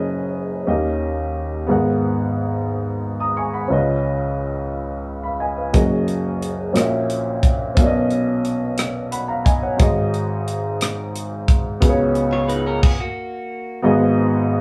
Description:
slow gospel; 59 BPM (dotted quarters); 6/8; straight; A4 = 438 Hz
warm upright piano; accompaniment; 0.0-14.6 s; F#1 to D#6; -21 LUFS; equal
tight funk drum kit; drums; 5.7-13.0 s; crash cymbal, hi-hat, kick drum, rim click; -20 LUFS; equal
direct-recorded clean electric guitar; second line; 12.3-13.8 s; A#3 to C#5; -28 LUFS; equal
moderate studio reverb, RT60 0.6 s; band playing live in one room, small room ambience; -20 LUFS; mono
0.0-13.8 A section
stop 12.8-13.8
0.0 B69/F#; 0.7 D#7; 1.7 G#m9; 3.7 C#9; 5.7 F#69; 6.8 F#7/A#; 7.8 Bmaj9; 9.8 G#7; 11.8 C#7sus4; 12.8 N.C.; 13.8 G#m7

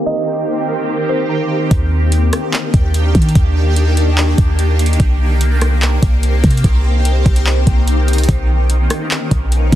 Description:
hip hop, atmospheric cloud-rap; 146 BPM; 4/4; half-time; Eb major; A4 = 438 Hz
kalimba; melody; 0.0-1.3 s; C5 to Eb5; -23 LUFS; right 1 dB; tape echo
shimmering ambient pad; sustained chords; 0.0-9.8 s; Eb3 to A#4; -19 LUFS; equal; chorus, built-in reverb, phaser, sidechain pumping
concert harp; arpeggios; 0.0-4.1 s; C4 to Bb5; -24 LUFS; right 1 dB; tape echo
clean 808-style bass; bass; 1.7-9.8 s; B1 to Eb3; -13 LUFS; equal
smooth R&B drum kit; drums; 1.7-9.8 s; handclaps, hi-hat, kick drum, rim click; -16 LUFS; equal
little or no reverb; dense, heavily limited modern master, low-pass filter; -12 LUFS; side -13 dB against mid
0.0-1.7 A section; 1.7-9.8 B section
filter sweep 0.0-1.7
0.0 Cm7; 1.7 Ebmaj7; 5.0 Cm7; 8.3 Bmaj9

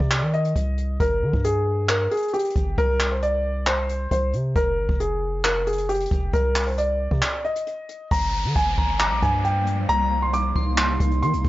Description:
hip hop, trap; 135 BPM; 4/4; half-time; G phrygian; A4 = 444 Hz
dark concert grand piano; melody; 0.0-11.4 s; G4 to D6; -24 LUFS; equal; analog delay
long sustained 808-style bass; bass; 0.0-11.5 s; F1 to Eb3; -25 LUFS; equal
jazz brush drum kit; drums; 0.0-11.5 s; handclaps, hi-hat, kick drum; -24 LUFS; equal
granular cloud pad; sustained chords; 8.7-11.5 s; C3 to Eb4; -30 LUFS; equal; built-in reverb
downlifter; sound effects; 8.1-11.5 s; -34 LUFS; equal
soft synth bell; second line; 8.8-11.5 s; Bb5 to D6; -32 LUFS; equal; chorus, phaser, analog delay
small room ambience; dry, gritty hardware recording, nothing above 7.6 kHz; -20 LUFS; side -16 dB against mid
0.0-8.1 A section; 8.1-11.5 B section
break 7.2-8.1
0.0 Cm; 1.0 Gm; 2.8 Csus2; 4.6 Fm; 6.3 Cm; 8.1 Gm7; 9.9 Cm7

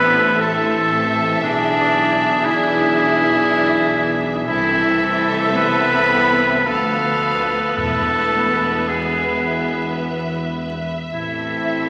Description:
classical; 51-60 BPM; 3/4; rubato; A minor; A4 = 440 Hz
rich studio violin section; melody; 0.0-11.9 s; E5 to F5; -30 LUFS; equal
bright clarinet; second line; 0.0-11.9 s; D4 to B4; -21 LUFS; equal
mellow hollow silver concert flute; second line; 0.0-11.9 s; D5 to B5; -32 LUFS; equal
rich studio violin section; second line; 0.0-11.9 s; D5 to B5; -32 LUFS; equal
clear studio viola section; accompaniment; 0.0-11.9 s; B3 to B4; -28 LUFS; equal
clear trombone section; sustained chords; 0.0-11.9 s; E3 to D4; -31 LUFS; equal
mellow French horn section; sustained chords; 0.0-11.9 s; E3 to E4; -34 LUFS; equal
mellow trumpet; stabs; 0.0-11.9 s; G#4 to B4; -27 LUFS; equal
mellow tuba; bass; 0.0-11.9 s; E1 to D2; -31 LUFS; equal
rich studio cello section; bass; 0.0-11.9 s; D3 to B3; -31 LUFS; equal
rich studio double bass section; bass; 0.0-11.9 s; A1 to E2; -33 LUFS; equal
timpani; percussion; 7.8-9.4 s; E2; -34 LUFS; equal
wet scoring stage reverb, RT60 1.6 s; vinyl crackle; -18 LUFS; mono
0.0-11.9 A section
0.0 Am; 1.4 E7/B; 4.5 Am/C; 6.7 Bdim/D; 7.8 E; 11.1 Am

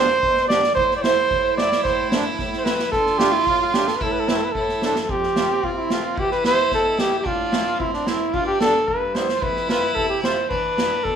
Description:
klezmer; 111 BPM; 2/4; straight; A minor; A4 = 439 Hz
warm cornet; melody; 0.0-11.2 s; D4 to D5; -20 LUFS; right 1 dB
bright violin; second line; 0.0-11.2 s; C4 to F4; -26 LUFS; right 4 dB
accordion; accompaniment; 0.0-11.2 s; F2 to G4; -28 LUFS; right 2 dB; light tremolo tuning
street-band drum kit; drums; 0.2-11.2 s; kick drum, snare drum; -26 LUFS; right 2 dB
wet small room reverb, RT60 0.6 s; rough home demo mix, studio reverb; -18 LUFS; side -8 dB against mid
0.0-5.1 A section; 5.1-11.2 B section
0.0 Bm; 0.8 Am; 2.9 Dm; 4.0 Am; 5.1 F; 6.2 Em; 7.2 Am; 8.3 G; 9.4 F; 10.5 Em

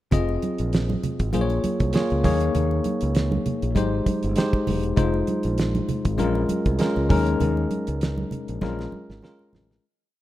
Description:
lush 1970s-style soul; 99 BPM; 4/4; swing 54% on 16ths; Bb dorian; A4 = 440 Hz
bell-like tine electric piano; accompaniment; 0.1-9.9 s; Ab3 to Eb5; -25 LUFS; left 2 dB; auto-pan
modern bright fingered electric bass; bass; 0.1-9.8 s; E1 to Eb2; -25 LUFS; equal
damped 70s drum kit; drums; 0.1-9.8 s; hi-hat, kick drum, snare drum; -24 LUFS; right 1 dB
congas; percussion; 0.1-9.7 s; -30 LUFS; right 3 dB
light reverb; rough home demo mix; -21 LUFS; side -14 dB against mid
0.1-9.8 A section
fade-out 7.4-9.8; drum fill 8.6-9.8
0.1 Fm7; 1.3 Bbm7; 2.2 Eb7sus4; 3.8 Abmaj7; 5.0 Fm7; 6.2 Bbm7; 7.1 Eb7sus4; 8.6 Bbm7

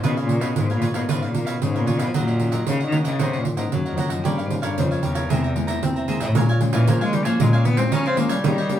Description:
samba and choro; 114 BPM; 4/4; straight; A4 = 440 Hz
clear cello; melody; 0.0-8.8 s; E2 to Db4; -24 LUFS; left 1 dB
cavaquinho; accompaniment; 0.0-8.7 s; Eb4 to Bb5; -30 LUFS; right 2 dB
nylon-string guitar; accompaniment; 0.0-8.8 s; Gb2 to Bb4; -28 LUFS; left 4 dB
nylon-string guitar; bass; 0.0-8.8 s; Ab2 to C4; -24 LUFS; left 1 dB
pandeiro; percussion; 0.0-8.8 s; -24 LUFS; right 4 dB
wet studio reverb, RT60 0.5 s; band playing live in one room; -19 LUFS; side -10 dB against mid
0.0-6.4 A section; 6.4-8.8 B section
cello solo 6.4-8.8
0.0 Db6; 2.1 Gb6; 4.3 Gm7b5; 5.3 Caug7; 6.4 Bbm7

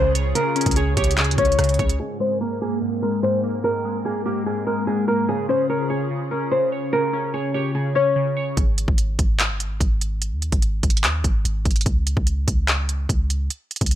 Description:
hip hop, trap; 146 BPM; 4/4; half-time; Ab major; A4 = 440 Hz
nylon-string guitar; melody; 0.0-8.5 s; G4 to Db5; -22 LUFS; left 1 dB; low-pass filter, ping-pong delay
glassy digital keys; accompaniment; 0.0-8.6 s; Ab2 to Db5; -24 LUFS; equal; chorus, low-pass filter
hollow soft pad; sustained chords; 0.0-8.5 s; Ab2 to Bb4; -30 LUFS; left 1 dB; ensemble chorus, low-pass filter
clean 808-style bass; bass; 0.0-2.0, 8.6-14.0 s; G1 to Eb2; -23 LUFS; equal
trap drum kit; drums; 0.2-2.0, 8.6-14.0 s; handclaps, hi-hat, kick drum, rim click; -21 LUFS; equal
light reverb, digital ambience; -19 LUFS; side -12 dB against mid
0.0-2.0 A section; 2.0-8.6 B section; 8.6-14.0 C section
filter sweep 2.0-8.6
0.0 Db; 2.0 Abadd9; 5.3 Db; 8.6 Ab5; 11.9 N.C.

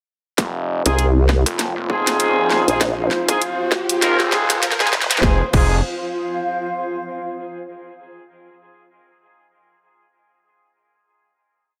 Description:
glitch hop; 99 BPM; 4/4; swing 58% on 16ths; F minor pentatonic; A4 = 442 Hz
gritty driven synth bass; bass; 0.4-5.8 s; Eb1 to F1; -24 LUFS; equal; tube saturation, high-pass filter
drum and bass drum kit; drums; 0.4-5.7 s; crash cymbal, hi-hat, rim click, snare drum; -24 LUFS; equal; overdrive, high-pass filter on snare, studio reverb, high-pass filter on hats, high-pass filter on cymbals
electronic kick drum; drums; 0.4-5.7 s; -21 LUFS; equal; overdrive, high-pass filter on kick, studio reverb
riser; sound effects; 1.5-5.2 s; -31 LUFS; equal
granular cloud pad; texture; 1.5-7.6 s; F4 to F5; -28 LUFS; equal; built-in reverb, sidechain pumping
warm horn section; stabs; 0.9-5.8 s; C4 to Bb4; -24 LUFS; equal; vintage 12-bit sampler grit, sidechain pumping, dub echo
vowel-sweep wobble bass; bass; 0.9-5.1 s; F1 to C2; -19 LUFS; equal; chorus
light reverb, digital ambience; high-pass filter; -19 LUFS; mono
0.4-5.2 build; 5.2-7.7 final chord
build-up 0.4-5.2; drum fill 0.4-5.2; filter sweep 0.4-5.2; riser 1.5-5.2
0.4 Fm7

